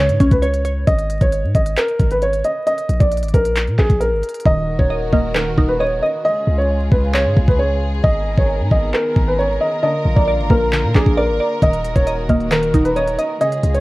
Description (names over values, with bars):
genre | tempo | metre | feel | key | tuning
hip hop, trap | 134 BPM | 4/4 | half-time | Eb minor | A4 = 440 Hz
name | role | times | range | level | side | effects
dark grand piano | melody | 0.0-13.8 s | Ab4 to Eb5 | -19 LUFS | equal | none
glassy wavetable pluck | accompaniment | 0.0-0.9, 4.5-6.2, 9.8-13.8 s | Db3 to Eb5 | -21 LUFS | right 1 dB | chorus
warm 808-style bass | bass | 0.0-13.8 s | Eb1 to Bb2 | -20 LUFS | equal | none
trap drum kit | drums | 0.1-13.8 s | handclaps, hi-hat, kick drum | -16 LUFS | equal | none
dark studio string section | sustained chords | 4.5-13.8 s | Db3 to Bb4 | -26 LUFS | equal | none
room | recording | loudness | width
little or no reverb | worn, warbling old tape, cassette tape, vinyl crackle, warbly pitch drift | -14 LUFS | side -20 dB against mid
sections
0.0-13.8 A section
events
hi-hats muted 4.5-11.6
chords
0.0 Db5; 0.9 Absus4; 2.7 N.C.; 4.5 Ebm; 6.2 Db; 8.0 Abmadd9; 9.8 Bb; 11.6 Ebm